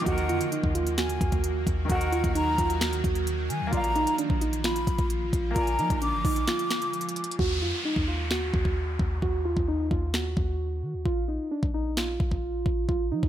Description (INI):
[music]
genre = hip hop, trap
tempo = 131 BPM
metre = 4/4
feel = half-time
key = Eb harmonic minor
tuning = A4 = 439 Hz
[part]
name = muted felt-like synth keys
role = melody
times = 0.0-13.3 s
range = D4 to Gb4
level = -30 LUFS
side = right 3 dB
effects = chorus
[part]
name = breathy hollow jazz flute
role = second line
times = 0.0-7.4 s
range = Gb5 to D6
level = -31 LUFS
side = left 2 dB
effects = tape echo
[part]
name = bright concert grand piano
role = accompaniment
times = 0.0-7.4 s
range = Eb3 to Ab5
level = -36 LUFS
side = equal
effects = none
[part]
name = granular cloud pad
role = sustained chords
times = 0.0-7.4 s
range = D3 to Gb4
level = -36 LUFS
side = right 2 dB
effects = built-in reverb
[part]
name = clean 808-style bass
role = bass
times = 0.1-13.3 s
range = Ab1 to F3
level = -30 LUFS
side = equal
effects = none
[part]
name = trap drum kit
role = drums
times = 0.1-13.3 s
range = finger snaps, hi-hat, kick drum, snare drum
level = -29 LUFS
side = equal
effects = overdrive
[part]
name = downlifter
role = sound effects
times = 7.4-11.1 s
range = none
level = -36 LUFS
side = equal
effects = none
[sound]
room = light reverb, digital ambience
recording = none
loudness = -24 LUFS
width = side -11 dB against mid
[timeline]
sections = 0.0-7.4 A section; 7.4-13.3 B section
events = break 6.5-7.4; hi-hats muted 7.4-13.3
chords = 0.1 Ebm; 3.7 Bb; 7.4 Ebm; 11.1 Bb5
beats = | 0.06 0.52 0.98 1.44 | 1.90 2.35 2.81 3.27 | 3.73 4.18 4.64 5.10 | 5.56 6.02 6.47 6.93 | 7.39 7.85 8.31 8.77 | 9.22 9.68 10.14 10.60 | 11.05 11.51 11.97 12.43 | 12.89